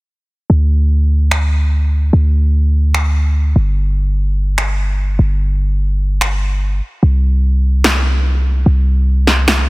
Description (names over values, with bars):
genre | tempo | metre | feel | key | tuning
future bass | 147 BPM | 4/4 | swing 55% on 16ths, half-time | unclear | A4 = 440 Hz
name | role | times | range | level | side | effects
warm 808-style bass | bass | 0.5-9.7 s | G1 to D2 | -12 LUFS | equal | none
electronic finger snaps and snare drum | drums | 1.3-9.6 s | none | -17 LUFS | equal | none
room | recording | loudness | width
little or no reverb | heavily compressed radio sound, multiband compression | -12 LUFS | side -23 dB against mid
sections
0.5-9.7 A section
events
none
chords
none